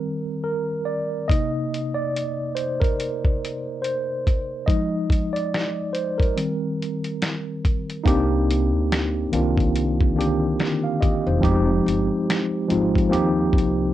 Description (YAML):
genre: lo-fi hip hop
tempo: 71 BPM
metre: 4/4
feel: swing 58% on 16ths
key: C minor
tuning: A4 = 440 Hz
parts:
  - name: mellow tine electric piano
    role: accompaniment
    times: 0.0-13.9 s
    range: C3 to F5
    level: -22 LUFS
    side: equal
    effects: medium stereo tremolo, cassette tape, low-pass filter
  - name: lo-fi sampler-style drum kit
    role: drums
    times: 1.3-13.8 s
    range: finger snaps, hi-hat, kick drum, snare drum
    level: -22 LUFS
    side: equal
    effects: none
  - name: upright bass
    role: bass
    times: 8.1-13.9 s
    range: E1 to Eb2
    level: -24 LUFS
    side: equal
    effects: none
room: light reverb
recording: worn, warbling old tape, cassette tape, warbly pitch drift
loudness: -20 LUFS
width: side -13 dB against mid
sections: 0.0-8.1 A section; 8.1-13.9 B section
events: tine electric piano solo 0.0-8.1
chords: 0.0 Eb6; 1.3 Cm7; 4.7 Fm7; 6.4 Eb6; 8.1 Cm9; 11.4 Fm9; 13.1 Eb69